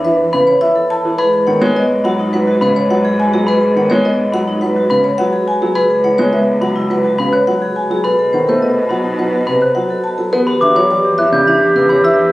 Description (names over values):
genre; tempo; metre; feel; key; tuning
classical, minimalist pattern music; 105 BPM; 4/4; straight; unclear; A4 = 444 Hz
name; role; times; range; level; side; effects
marimba with medium mallets; melody; 0.0-12.2 s; G#4 to A5; -16 LUFS; left 1 dB; none
vibraphone with hard mallets; arpeggios; 0.0-12.3 s; D4 to C#5; -20 LUFS; right 1 dB; none
rich cello; bass; 0.0-12.3 s; C#2 to B2; -21 LUFS; equal; none
warm concert grand piano; accompaniment; 0.1-12.2 s; C3 to B3; -18 LUFS; equal; none
glockenspiel with soft plastic mallets; arpeggios; 0.3-12.2 s; B5 to G6; -20 LUFS; left 2 dB; none
bright clarinet; second line; 10.3-12.3 s; G4; -15 LUFS; equal; none
room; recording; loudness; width
moderate large studio reverb, RT60 0.8 s; recorded on a phone in the room, studio reverb; -11 LUFS; side -17 dB against mid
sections
0.0-10.3 A section; 10.3-12.3 B section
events
none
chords
0.0 Esus4; 1.2 G#m7; 5.8 C#m7; 8.0 B7b9; 10.3 Em9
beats
0.04 0.62 | 1.19 1.76 2.33 2.90 | 3.47 4.04 4.62 5.19 | 5.76 6.33 6.90 7.47 | 8.04 8.62 9.19 9.76 | 10.33 10.90 11.47 12.04